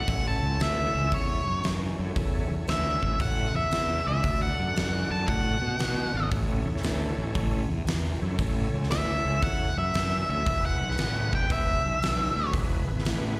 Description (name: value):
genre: blues rock power trio and southern rock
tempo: 116 BPM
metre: 4/4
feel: swing 67% on 8ths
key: A major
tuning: A4 = 440 Hz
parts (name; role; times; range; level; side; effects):
- octave-fuzz lead guitar; melody; 0.0-12.5 s; C#5 to A5; -31 LUFS; equal; distortion, slapback echo
- overdriven tonewheel organ; sustained chords; 0.0-13.4 s; B3 to D5; -41 LUFS; equal; slow rotary speaker, chorus vibrato
- fuzz fingered electric bass; bass; 0.0-13.3 s; E1 to B2; -31 LUFS; equal; overdrive
- huge arena drum kit; drums; 0.1-13.2 s; hi-hat, kick drum, snare drum; -33 LUFS; equal; none
room: little or no reverb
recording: live gig heard through the venue's PA, recital hall reverb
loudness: -27 LUFS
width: mono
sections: 0.0-13.4 A section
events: lead electric guitar solo 0.0-13.4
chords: 0.1 A; 4.2 D; 6.3 A; 10.5 E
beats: | 0.08 0.60 1.12 1.64 | 2.16 2.68 3.20 3.72 | 4.24 4.76 5.28 5.80 | 6.32 6.84 7.36 7.87 | 8.39 8.91 9.43 9.95 | 10.46 10.98 11.50 12.02 | 12.54 13.05